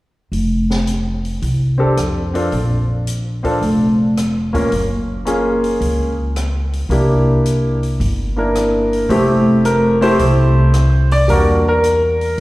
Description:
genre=jazz piano trio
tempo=110 BPM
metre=4/4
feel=swing 68% on 8ths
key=F major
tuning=A4 = 440 Hz
part: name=upright bass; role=bass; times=0.3-12.4 s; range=F1 to F2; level=-16 LUFS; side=equal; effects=none
part: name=open jazz drum kit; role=drums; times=0.3-12.4 s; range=hi-hat, kick drum, rim click, snare drum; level=-29 LUFS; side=equal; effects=none
part: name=clear concert grand piano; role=melody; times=1.8-12.4 s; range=G3 to D5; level=-16 LUFS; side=equal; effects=slapback echo
room=light reverb, small room ambience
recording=live gig heard through the venue's PA, recital hall reverb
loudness=-13 LUFS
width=side -18 dB against mid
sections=0.3-9.1 A section; 9.1-12.4 B section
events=none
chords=0.3 F5; 2.5 Bb5; 4.7 Gbmaj7; 6.9 C7; 9.1 Fmaj9; 11.3 Em7b5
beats=| 0.33 0.88 1.42 1.97 | 2.52 3.07 3.62 4.16 | 4.71 5.26 5.81 6.36 | 6.91 7.45 8.00 8.55 | 9.10 9.64 10.19 10.74 | 11.29 11.84 12.38

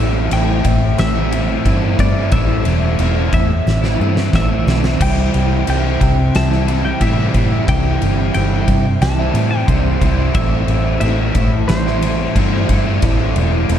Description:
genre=rock, shoegaze and dream pop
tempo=90 BPM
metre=4/4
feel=straight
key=unclear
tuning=A4 = 438 Hz
part: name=twelve-string electric guitar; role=melody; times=0.0-13.8 s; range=C5 to A5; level=-26 LUFS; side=left 1 dB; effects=diffuse ambient delay
part: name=picked twelve-string acoustic guitar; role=arpeggios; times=0.0-13.8 s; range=G3 to E4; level=-28 LUFS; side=left 1 dB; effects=none
part: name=overdriven electric guitar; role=riff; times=0.0-13.8 s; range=A2 to E4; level=-21 LUFS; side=left 7 dB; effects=ensemble chorus
part: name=overdriven semi-hollow guitar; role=riff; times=0.0-13.8 s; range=A2 to E4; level=-21 LUFS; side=right 9 dB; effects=reverse reverb
part: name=vintage muted fingered electric bass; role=bass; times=0.0-13.8 s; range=E1 to A2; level=-17 LUFS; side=equal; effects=none
part: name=huge arena drum kit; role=drums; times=0.3-13.8 s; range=crash cymbal, kick drum, ride cymbal, snare drum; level=-19 LUFS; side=equal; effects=vintage 12-bit sampler grit
room=moderate plate reverb, RT60 2.6 s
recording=dreamy mix soaked in reverb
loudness=-13 LUFS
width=side -10 dB against mid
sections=0.0-13.8 A section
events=drum fill 3.7-5.0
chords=0.0 Am7; 5.0 C; 10.4 Am7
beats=0.32 0.99 1.66 | 2.33 2.99 3.66 4.33 | 5.00 5.67 6.34 7.01 | 7.68 8.35 9.01 9.68 | 10.35 11.02 11.69 12.36 | 13.03 13.70

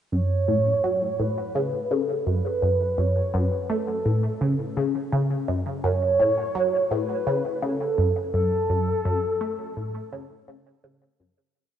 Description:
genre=ambient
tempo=84 BPM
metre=4/4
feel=straight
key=F# minor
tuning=A4 = 440 Hz
part: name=mellow horn-like synth lead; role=melody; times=0.1-10.8 s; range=A4 to C#5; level=-25 LUFS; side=right 1 dB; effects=chorus, phaser, tape echo
part: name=resonant blip pluck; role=riff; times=0.1-11.3 s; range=F#2 to A3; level=-24 LUFS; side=equal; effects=phaser, lush chorus, tape echo
room=wet lush hall reverb, RT60 3.1 s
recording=nothing above 10.5 kHz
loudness=-22 LUFS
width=side -9 dB against mid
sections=0.1-11.6 A section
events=fade-out 7.7-11.6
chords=0.1 F#m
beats=| 0.12 0.84 1.55 2.27 | 2.98 3.70 4.41 5.12 | 5.84 6.55 7.27 7.98 | 8.70 9.41 10.12 10.84

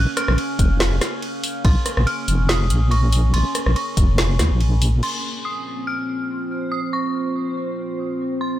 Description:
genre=deep dubstep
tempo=142 BPM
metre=4/4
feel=swing 54% on 16ths, half-time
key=Bb minor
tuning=A4 = 441 Hz
part: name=dark detuned synth bell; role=melody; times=0.0-8.6 s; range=C6 to Gb6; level=-28 LUFS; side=equal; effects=chorus, dub echo
part: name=overtone-sweeping drone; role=sustained chords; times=0.0-8.6 s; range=Bb2 to Db4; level=-28 LUFS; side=right 1 dB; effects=chorus, built-in reverb, phaser, vintage 12-bit sampler grit
part: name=deep soft wobble bass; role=bass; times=0.0-5.0 s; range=F1 to Eb2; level=-17 LUFS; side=equal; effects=chorus
part: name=deep house drum kit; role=drums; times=0.2-5.1 s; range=crash cymbal, hi-hat, ride cymbal, rim click, snare drum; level=-25 LUFS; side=equal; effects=none
part: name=electronic kick drum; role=drums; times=0.6-4.1 s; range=none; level=-17 LUFS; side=equal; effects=none
part: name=backwards swelling texture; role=texture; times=5.6-8.6 s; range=C4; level=-30 LUFS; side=right 2 dB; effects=built-in reverb
room=little or no reverb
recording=none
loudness=-18 LUFS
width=side -13 dB against mid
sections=0.0-5.0 A section; 5.0-8.6 B section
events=drop 0.0-5.0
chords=0.0 Bbm; 5.0 Bbmadd9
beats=0.38 0.80 1.23 | 1.65 2.07 2.49 2.92 | 3.34 3.76 4.18 4.61 | 5.03 5.45 5.87 6.29 | 6.72 7.14 7.56 7.99 | 8.41

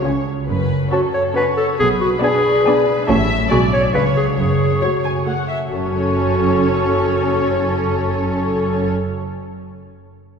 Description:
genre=cinematic, playful, whimsical film cue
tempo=138 BPM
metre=3/4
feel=straight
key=F# minor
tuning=A4 = 440 Hz
part: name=muted studio violin section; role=melody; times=0.0-8.9 s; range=A4 to E5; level=-25 LUFS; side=left 2 dB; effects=none
part: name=clear clarinet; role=second line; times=0.0-8.9 s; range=F#4 to C#5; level=-19 LUFS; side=left 1 dB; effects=none
part: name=muted studio violin section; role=second line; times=0.0-8.9 s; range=A4 to A5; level=-25 LUFS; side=left 2 dB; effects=none
part: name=muted studio viola section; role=accompaniment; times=0.0-8.9 s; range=G#3 to G#4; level=-25 LUFS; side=right 1 dB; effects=none
part: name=concert harp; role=arpeggios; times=0.0-9.6 s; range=F#2 to A5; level=-24 LUFS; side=left 2 dB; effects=none
part: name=muted studio double bass section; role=bass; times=0.0-8.9 s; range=F#1 to C#2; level=-24 LUFS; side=right 4 dB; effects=none
part: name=muted studio cello section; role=bass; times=0.1-8.9 s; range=F#2 to C#3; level=-24 LUFS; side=right 3 dB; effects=none
room=wet church reverb, RT60 2.8 s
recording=recorded in a church or concert hall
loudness=-15 LUFS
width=side -6 dB against mid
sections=0.0-5.7 A section; 5.7-8.3 B section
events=none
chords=0.0 C#; 0.5 F#m; 1.8 G#dim/B; 3.1 F#m/A; 3.5 G#m7b5/B; 3.9 C#7b9; 4.4 F#m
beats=0.05 | 0.48 0.92 1.36 | 1.79 2.22 2.65 | 3.08 3.51 3.95 | 4.38 4.82 5.26 | 5.70 6.14 6.57 | 7.01 7.45 7.88

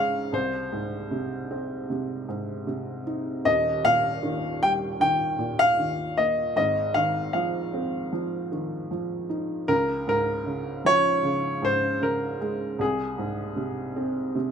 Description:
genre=pop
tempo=77 BPM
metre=4/4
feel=straight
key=Ab major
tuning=A4 = 440 Hz
part: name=clear concert grand piano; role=melody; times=0.0-14.5 s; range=Ab4 to G5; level=-24 LUFS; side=left 1 dB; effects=none
part: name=felt-muted upright piano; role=accompaniment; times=0.0-14.5 s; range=Eb1 to Eb4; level=-28 LUFS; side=right 1 dB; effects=none
room=light reverb, studio ambience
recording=rough home demo mix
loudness=-24 LUFS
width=side -7 dB against mid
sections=0.0-14.5 A section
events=none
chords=0.3 Ab/C; 3.4 Eb; 6.6 Ab6; 9.7 Db6; 12.8 Ab/C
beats=| 0.33 1.11 1.89 2.67 | 3.45 4.23 5.01 5.79 | 6.57 7.34 8.12 8.90 | 9.68 10.46 11.24 12.02 | 12.80 13.58 14.36

